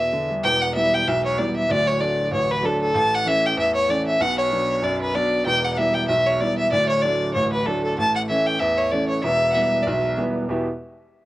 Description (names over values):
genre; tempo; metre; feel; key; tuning
celtic folk; 191 BPM; 4/4; swing 55% on 8ths; E dorian; A4 = 438 Hz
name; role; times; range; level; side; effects
rich fiddle; melody; 0.0-10.2 s; A4 to A5; -20 LUFS; equal; cassette tape
clear upright piano; accompaniment; 0.0-10.7 s; D1 to E5; -24 LUFS; right 1 dB; cassette tape
room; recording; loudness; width
light reverb, small room ambience; home recording on cassette; -18 LUFS; side -16 dB against mid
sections
0.4-10.5 A section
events
none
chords
0.4 Em; 1.7 D; 2.9 A; 4.2 Bm; 5.5 Em; 6.7 D; 8.0 A; 9.2 Em